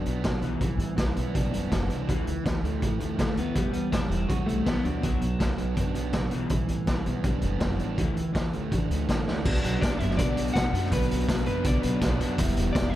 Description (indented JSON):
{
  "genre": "indie rock",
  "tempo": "163 BPM",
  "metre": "4/4",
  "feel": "straight",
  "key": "unclear",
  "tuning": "A4 = 440 Hz",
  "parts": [
    { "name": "clean electric guitar", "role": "melody", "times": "0.0, 3.2-6.0, 9.8-13.0 s", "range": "A3 to F#5", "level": "-32 LUFS", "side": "left 2 dB", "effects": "slapback echo" },
    { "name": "overdriven semi-hollow guitar", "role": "riff", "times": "0.0-12.9 s", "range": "E3 to F#4", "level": "-32 LUFS", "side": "right 7 dB", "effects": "wide subtle chorus" },
    { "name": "raw garage guitar", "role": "riff", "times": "0.0-13.0 s", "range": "B2 to E4", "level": "-33 LUFS", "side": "left 6 dB", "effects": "overdrive" },
    { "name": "upright bass", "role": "bass", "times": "0.0-13.0 s", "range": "E1 to D3", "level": "-30 LUFS", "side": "equal", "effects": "none" },
    { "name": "raw garage drum kit", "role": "drums", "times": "0.1-12.8 s", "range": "crash cymbal, hi-hat, kick drum, snare drum", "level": "-28 LUFS", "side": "equal", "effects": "none" }
  ],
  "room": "light reverb",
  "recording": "dark, warm production",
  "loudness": "-24 LUFS",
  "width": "side -13 dB against mid",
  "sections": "0.0-9.5 A section; 9.5-13.0 B section",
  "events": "drum fill 9.3",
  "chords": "0.4 G6/B; 2.1 Dsus2; 3.6 Emadd9; 5.0 Bm; 6.3 G6/B; 8.0 Dsus2; 9.5 Bm; 12.4 Em"
}